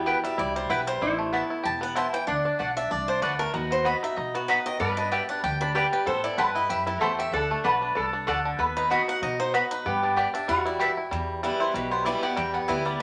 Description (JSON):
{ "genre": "bluegrass", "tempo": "190 BPM", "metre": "4/4", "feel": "swing 55% on 8ths", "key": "E minor", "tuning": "A4 = 440 Hz", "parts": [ { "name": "bluegrass banjo", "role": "melody", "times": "0.0-13.0 s", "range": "D3 to G4", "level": "-32 LUFS", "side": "equal", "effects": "none" }, { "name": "lap resonator guitar", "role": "second line", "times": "0.0-10.9 s", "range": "D4 to B4", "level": "-31 LUFS", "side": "equal", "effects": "none" }, { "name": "picked swing-style acoustic guitar", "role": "accompaniment", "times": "0.0-13.0 s", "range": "E2 to B5", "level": "-33 LUFS", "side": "equal", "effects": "none" }, { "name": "upright bass", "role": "bass", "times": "0.0-13.0 s", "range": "E1 to B2", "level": "-38 LUFS", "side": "equal", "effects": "none" }, { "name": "mandolin", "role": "stabs", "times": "0.1-13.0 s", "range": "G3 to B5", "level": "-30 LUFS", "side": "equal", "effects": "none" } ], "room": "wet studio reverb, RT60 0.6 s", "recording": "none", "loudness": "-26 LUFS", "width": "mono", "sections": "0.0-1.0 A section; 1.0-11.1 A section; 11.1-13.0 A section", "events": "steel-string acoustic guitar solo 0.0-11.1; mandolin solo 11.1-13.0", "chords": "0.0 Em; 1.0 Amadd9; 2.3 D; 3.5 B/D#; 4.8 G; 6.1 Amadd9; 7.3 D; 8.6 B/D#; 9.9 G; 10.5 Emadd9; 11.1 Em" }